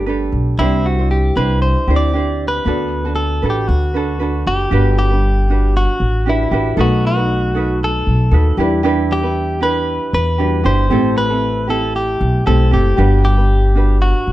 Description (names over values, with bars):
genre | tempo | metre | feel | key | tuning
acoustic pop | 116 BPM | 4/4 | swing 55% on 16ths | G major | A4 = 436 Hz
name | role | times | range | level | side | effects
direct-recorded clean electric guitar | melody | 0.0-14.3 s | E4 to D5 | -20 LUFS | left 1 dB | plate reverb
felt-muted upright piano | accompaniment | 0.0-14.3 s | G3 to F#5 | -24 LUFS | left 4 dB | none
ukulele | accompaniment | 0.0-14.3 s | C4 to C5 | -21 LUFS | right 5 dB | none
upright bass | bass | 0.0-14.3 s | F#1 to E2 | -16 LUFS | equal | none
room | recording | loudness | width
light reverb | dark, warm production | -13 LUFS | side -15 dB against mid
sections
0.0-4.7 A section; 4.7-14.3 B section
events
none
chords
0.0 Gadd9; 0.6 Cadd9; 2.7 D6; 4.7 Gmaj7; 6.8 B7; 8.6 Em7; 10.9 Am7; 13.0 Gmaj7